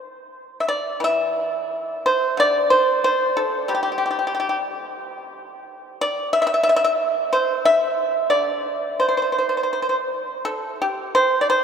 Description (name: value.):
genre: chinese traditional, Chinese solo plucked strings.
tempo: 80-93 BPM.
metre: 4/4.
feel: rubato.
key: unclear.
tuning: A4 = 436 Hz.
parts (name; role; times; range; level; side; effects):
pipa; solo; 0.6-11.6 s; D3 to E5; -19 LUFS; equal; none.
room: wet cathedral reverb, RT60 5.5 s.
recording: in a vast, echoing space.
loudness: -18 LUFS.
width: side -7 dB against mid.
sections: 0.0-10.4 A section; 10.4-11.6 B section.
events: none.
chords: none.